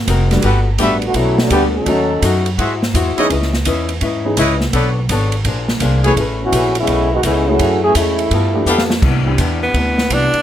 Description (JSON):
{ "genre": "jazz, big band swing", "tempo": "168 BPM", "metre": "4/4", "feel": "swing 65% on 8ths", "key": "unclear", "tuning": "A4 = 440 Hz", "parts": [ { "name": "upright bass", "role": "bass", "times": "0.0-10.4 s", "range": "F1 to G#2", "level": "-18 LUFS", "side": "equal", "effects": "none" }, { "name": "archtop guitar, miked and amplified", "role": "accompaniment", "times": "0.1-10.4 s", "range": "C3 to D#5", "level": "-22 LUFS", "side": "left 4 dB", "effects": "none" }, { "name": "swinging big-band drum kit", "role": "drums", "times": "0.1-10.4 s", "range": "crash cymbal, hi-hat, kick drum, ride cymbal, snare drum", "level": "-20 LUFS", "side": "right 1 dB", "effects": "none" }, { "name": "warm upright piano", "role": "accompaniment", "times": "0.3-9.7 s", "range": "E3 to A4", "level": "-19 LUFS", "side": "left 1 dB", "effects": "none" }, { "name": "clear trumpet section", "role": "stabs", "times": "0.4-6.1, 8.7-8.8 s", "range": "E4 to F#5", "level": "-17 LUFS", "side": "left 1 dB", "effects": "none" }, { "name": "warm trombone section", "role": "second line", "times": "1.1-2.4, 6.4-8.9 s", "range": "D3 to A4", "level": "-16 LUFS", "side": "equal", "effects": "none" }, { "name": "edgy tenor saxophone", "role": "melody", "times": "9.6-10.4 s", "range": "B3 to D4", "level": "-16 LUFS", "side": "equal", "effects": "none" } ], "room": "moderate booth ambience, RT60 0.2 s", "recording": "none", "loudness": "-13 LUFS", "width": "side -11 dB against mid", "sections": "0.0-9.0 A section; 9.0-10.4 B section", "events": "trombone section solo 0.0-9.0; drum fill 8.7-9.0; tenor saxophone solo 9.0-10.4", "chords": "0.4 Gmaj9; 1.9 D#m7b5; 2.6 G#7alt; 3.3 C#m9; 4.7 Bm9; 5.5 A#9; 6.2 Amaj9; 7.6 F#m9; 8.3 G9; 9.0 Cmaj9", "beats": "0.08 | 0.44 0.80 1.15 1.51 | 1.87 2.23 2.59 2.95 | 3.31 3.66 4.02 4.38 | 4.74 5.10 5.46 5.81 | 6.17 6.53 6.89 7.24 | 7.60 7.96 8.32 8.68 | 9.03 9.39 9.75 10.11" }